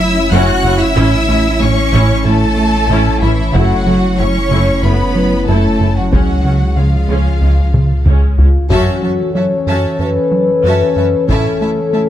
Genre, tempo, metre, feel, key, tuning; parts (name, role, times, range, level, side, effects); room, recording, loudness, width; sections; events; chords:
cinematic, hybrid orchestral and electronic film score; 93 BPM; 4/4; straight; F# minor; A4 = 440 Hz
rich symphonic violin section; melody; 0.0-8.1 s; E5 to F#6; -21 LUFS; left 2 dB
rich studio violin section; second line; 0.0-12.0 s; E4 to A5; -22 LUFS; left 3 dB
dark analog pad; sustained chords; 0.0-12.1 s; E3 to C#5; -20 LUFS; equal; wide subtle chorus
rubbery square bass; riff; 0.0-12.1 s; C#2 to A3; -17 LUFS; right 1 dB
punchy sub bass; bass; 0.0-8.7 s; F#1 to C#2; -17 LUFS; equal
rich studio cello section; bass; 0.0-12.0 s; F#2 to F#4; -20 LUFS; right 2 dB
clear symphonic viola section; accompaniment; 0.3-12.0 s; G#3 to F#4; -22 LUFS; right 2 dB
bright symphonic double bass section; bass; 0.3-8.5 s; F#1 to C#2; -19 LUFS; right 2 dB
mellow French horn section; sustained chords; 1.0-12.1 s; G#3 to C#5; -18 LUFS; left 5 dB
taiko ensemble; drums; 1.0-11.9 s; -16 LUFS; equal
light reverb; close, detailed microphones; -10 LUFS; side -11 dB against mid
0.0-8.7 A section; 8.7-12.1 A section
drum fill 7.7-8.7; band accent 8.7-9.4
0.0 F#m7; 1.0 A; 3.5 F#m7; 6.1 C#; 8.7 F#m7; 11.3 A